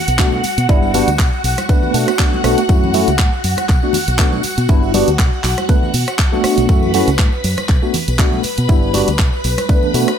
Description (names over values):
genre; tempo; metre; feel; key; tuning
filtered disco house; 120 BPM; 4/4; swing 55% on 16ths; B minor; A4 = 440 Hz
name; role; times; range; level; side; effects
phased string machine; sustained chords; 0.0-10.2 s; F#4 to B5; -22 LUFS; equal; ensemble chorus, phaser, sidechain pumping
fingered electric bass; bass; 0.1-10.0 s; G1 to B2; -19 LUFS; equal; sidechain pumping
house drum kit; drums; 0.1-10.2 s; handclaps, hi-hat, rim click; -22 LUFS; right 1 dB; sidechain pumping on hats
tambourine and congas; percussion; 0.1-10.2 s; none; -27 LUFS; right 2 dB; sidechain pumping on perc
tine electric piano; accompaniment; 0.2-10.1 s; G3 to B4; -18 LUFS; equal; fast stereo tremolo, phaser, sidechain pumping
electronic kick drum; drums; 0.2-9.8 s; none; -14 LUFS; equal; none
room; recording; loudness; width
light reverb; none; -12 LUFS; side -8 dB against mid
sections
0.0-10.2 A section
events
none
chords
0.0 Bm7; 0.7 Gmaj7; 1.4 Bm7; 2.7 F#m7; 3.7 Bm7; 4.7 Gmaj7; 5.4 Bm7; 6.7 F#m7; 7.7 Bm7; 8.7 Gmaj7; 9.4 Bm7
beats
0.19 | 0.69 1.19 1.69 2.19 | 2.69 3.19 3.69 4.19 | 4.69 5.19 5.69 6.19 | 6.69 7.19 7.69 8.19 | 8.69 9.19 9.69